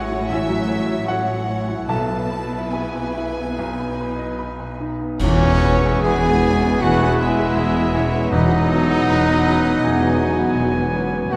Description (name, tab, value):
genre	classical, romantic movement for piano and orchestra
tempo	70-81 BPM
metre	4/4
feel	rubato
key	E major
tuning	A4 = 439 Hz
part	clear baby grand piano	melody	0.0-11.4 s	A1 to C#6	-26 LUFS	equal	none
part	rich studio violin section	melody	0.0-11.4 s	B4 to G#5	-35 LUFS	equal	none
part	rich chamber violin section	second line	0.0-11.3 s	B3 to A5	-34 LUFS	equal	none
part	warm chamber viola section	accompaniment	0.0-11.3 s	E3 to E4	-31 LUFS	equal	none
part	clear studio cello section	bass	0.0-11.4 s	D#2 to B2	-29 LUFS	equal	none
part	warm chamber double bass section	bass	0.0-11.4 s	E1 to D#2	-29 LUFS	equal	none
part	timpani	percussion	1.9-9.4 s	E2 to B2	-31 LUFS	equal	none
part	bright clarinet	second line	5.2-11.4 s	E3 to B3	-30 LUFS	equal	none
part	mellow flute section	second line	5.2-11.4 s	F#5 to A5	-34 LUFS	equal	none
part	mellow bassoon	accompaniment	5.2-11.4 s	B3	-31 LUFS	equal	none
part	mellow French horn section	sustained chords	5.2-11.4 s	G#3 to A4	-29 LUFS	equal	none
part	dark trumpet	stabs	5.2-11.4 s	C#4 to G#4	-24 LUFS	equal	none
part	mellow tuba	bass	5.2-11.4 s	E1 to D#2	-30 LUFS	equal	none
part	clash cymbals and concert bass drum	percussion	5.2-6.8 s	none	-30 LUFS	equal	none
part	clear oboe	second line	6.8-11.4 s	A4 to G#5	-31 LUFS	equal	none
room	wet concert hall reverb, RT60 2.1 s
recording	none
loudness	-19 LUFS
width	mono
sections	0.0-5.2 A section; 5.2-11.4 B section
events	band accent 5.2-6.0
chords	0.0 F#m7/A; 1.9 E/B; 3.6 B; 5.2 E; 8.3 B/E